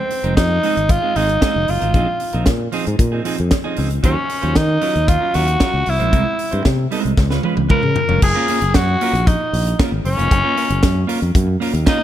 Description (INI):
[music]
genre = disco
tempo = 115 BPM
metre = 4/4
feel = straight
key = unclear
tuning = A4 = 440 Hz
[part]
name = raspy tenor saxophone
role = melody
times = 0.0-12.0 s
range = C4 to Bb4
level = -19 LUFS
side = equal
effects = none
[part]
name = clean electric guitar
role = accompaniment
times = 0.0-12.0 s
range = F3 to Db5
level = -24 LUFS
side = right 4 dB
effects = none
[part]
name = tight funk drum kit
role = drums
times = 0.1-12.0 s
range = crash cymbal, hi-hat, kick drum, snare drum, toms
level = -18 LUFS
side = equal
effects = none
[part]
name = fingered electric bass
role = bass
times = 0.2-11.8 s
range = F1 to Eb3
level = -20 LUFS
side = equal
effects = none
[sound]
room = light reverb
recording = none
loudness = -14 LUFS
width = side -11 dB against mid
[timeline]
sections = 0.0-8.2 A section; 8.2-12.0 B section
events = drum fill 7.2-8.2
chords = 0.0 Fm7; 1.9 Bb9sus4; 4.0 Ebm9; 5.9 C7b13; 7.2 Db7; 8.2 Gbmaj7